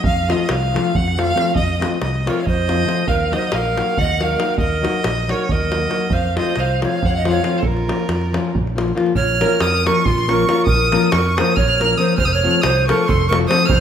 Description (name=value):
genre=balkan folk, Balkan wedding band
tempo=277 BPM (eighths)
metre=7/8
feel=straight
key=Bb harmonic minor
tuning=A4 = 440 Hz
part: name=clear violin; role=melody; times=0.0-13.8 s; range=Bb4 to F6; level=-21 LUFS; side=right 1 dB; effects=none
part: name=davul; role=percussion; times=0.0-13.8 s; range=none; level=-23 LUFS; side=right 1 dB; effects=none
part: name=fingered electric bass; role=bass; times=0.1-13.8 s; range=F1 to F2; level=-22 LUFS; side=equal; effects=none
part: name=nylon-string guitar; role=accompaniment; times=0.3-13.7 s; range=F3 to Bb4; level=-21 LUFS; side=left 4 dB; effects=none
part: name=breathy bright large pan pipes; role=second line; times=2.3-13.8 s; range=F4 to Eb5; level=-23 LUFS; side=right 5 dB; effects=none
room=moderate recital hall reverb, RT60 1.9 s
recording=minimal, uncompressed stereo recording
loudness=-15 LUFS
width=side -8 dB against mid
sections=0.0-9.2 A section; 9.2-13.8 B section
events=none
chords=0.0 F; 3.1 Ebm; 6.1 F; 7.6 Bbm; 12.2 F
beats=| 0.05 0.26 0.48 0.69 0.91 1.13 1.34 | 1.56 1.77 1.99 2.21 2.42 2.64 2.85 | 3.07 3.29 3.50 3.72 3.94 4.16 4.37 | 4.59 4.81 5.02 5.24 5.46 5.68 5.89 | 6.11 6.33 6.55 6.77 6.98 7.20 7.42 | 7.64 7.86 8.07 8.29 8.51 8.72 8.94 | 9.16 9.37 9.59 9.81 10.02 10.24 10.46 | 10.67 10.89 11.10 11.32 11.54 11.75 11.97 | 12.18 12.40 12.62 12.83 13.05 13.26 13.48 | 13.70